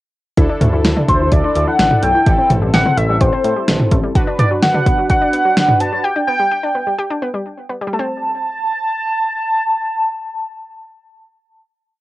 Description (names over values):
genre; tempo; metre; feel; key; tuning
synth-pop; 127 BPM; 4/4; straight; A dorian; A4 = 444 Hz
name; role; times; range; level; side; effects
analog synth brass; accompaniment; 0.4-6.0 s; C4 to B4; -22 LUFS; equal; chorus
analog pluck; arpeggios; 0.4-11.3 s; E3 to G4; -23 LUFS; left 1 dB; chorus, analog delay
smooth synth bass; bass; 0.4-4.0 s; A1 to A2; -19 LUFS; equal; none
deep house drum kit; drums; 0.4-5.9 s; hi-hat, kick drum, snare drum, toms; -15 LUFS; equal; cassette tape
octave-doubled lead; melody; 1.1-11.3 s; C5 to A5; -16 LUFS; equal; chorus, phaser, cassette tape, analog delay
room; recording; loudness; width
wet booth ambience, RT60 0.2 s; home recording on cassette; -13 LUFS; side -16 dB against mid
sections
0.4-7.9 pre-chorus; 7.9-11.7 final chord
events
none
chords
0.4 Dsus2; 2.3 Am7; 4.2 Bm; 6.0 G; 7.9 Am7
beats
| 0.37 0.85 1.32 1.79 | 2.26 2.74 3.21 3.68 | 4.15 4.63 5.10 5.57 | 6.04 6.52 6.99 7.46 | 7.93 8.41 8.88 9.35 | 9.82 10.29 10.77 11.24